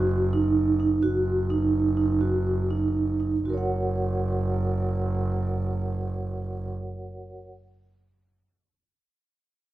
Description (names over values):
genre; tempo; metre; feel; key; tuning
contemporary instrumental, contemporary; 234-257 BPM (eighths); 5/8; straight; F# major; A4 = 439 Hz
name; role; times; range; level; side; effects
vibraphone with medium mallets; arpeggios; 0.0-7.5 s; D#4 to F#5; -26 LUFS; right 2 dB; none
bright double bass; bass; 0.0-6.7 s; F#1; -27 LUFS; right 1 dB; none
room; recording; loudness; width
light reverb; close, detailed microphones; -23 LUFS; side -14 dB against mid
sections
0.0-3.4 A section; 3.4-6.0 B section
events
slowing down 1.0-3.4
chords
0.0 D#m/F#; 3.4 F#